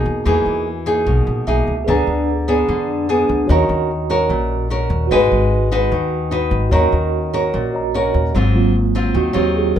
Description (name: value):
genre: bossa nova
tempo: 149 BPM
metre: 4/4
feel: straight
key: unclear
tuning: A4 = 441 Hz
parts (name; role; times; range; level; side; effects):
- mellow tine electric piano; accompaniment; 0.0-9.8 s; Gb3 to A#5; -22 LUFS; right 5 dB; medium stereo tremolo
- nylon-string guitar; accompaniment; 0.0-9.8 s; Ab2 to B4; -18 LUFS; left 1 dB; none
- upright bass; bass; 0.1-9.8 s; G#1 to E#2; -20 LUFS; left 1 dB; none
room: moderate large studio reverb, RT60 0.9 s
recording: minimal, uncompressed stereo recording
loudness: -15 LUFS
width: side -9 dB against mid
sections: 0.0-8.3 A section; 8.3-9.8 B section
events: tine electric piano fill 1.3-1.9; tine electric piano solo 8.3-9.8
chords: 0.0 Emaj9#11; 1.9 A#7b9/D; 3.5 D#m7; 5.1 G#m7; 6.7 D#m7; 8.3 Ab13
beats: | 0.26 0.67 1.07 1.47 | 1.88 2.28 2.69 3.09 | 3.49 3.90 4.30 4.71 | 5.11 5.51 5.92 6.32 | 6.72 7.13 7.53 7.94 | 8.34 8.74 9.15 9.55